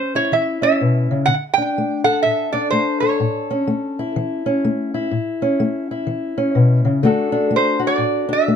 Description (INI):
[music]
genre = acoustic country blues, solo or duo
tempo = 125 BPM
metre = 4/4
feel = swing 61% on 8ths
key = A major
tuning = A4 = 439 Hz
[part]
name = metal-body resonator slide guitar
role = melody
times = 0.0-3.6, 7.6-8.6 s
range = C5 to G5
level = -18 LUFS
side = right 4 dB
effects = slapback echo, plate reverb
[part]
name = fingerpicked old ladder-braced acoustic guitar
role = accompaniment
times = 0.0-8.6 s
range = A2 to A4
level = -18 LUFS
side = left 2 dB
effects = none
[sound]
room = moderate booth ambience, RT60 0.2 s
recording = none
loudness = -16 LUFS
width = side -8 dB against mid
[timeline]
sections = 0.0-8.6 A section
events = none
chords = 0.0 A; 1.3 D5; 3.2 A; 7.0 D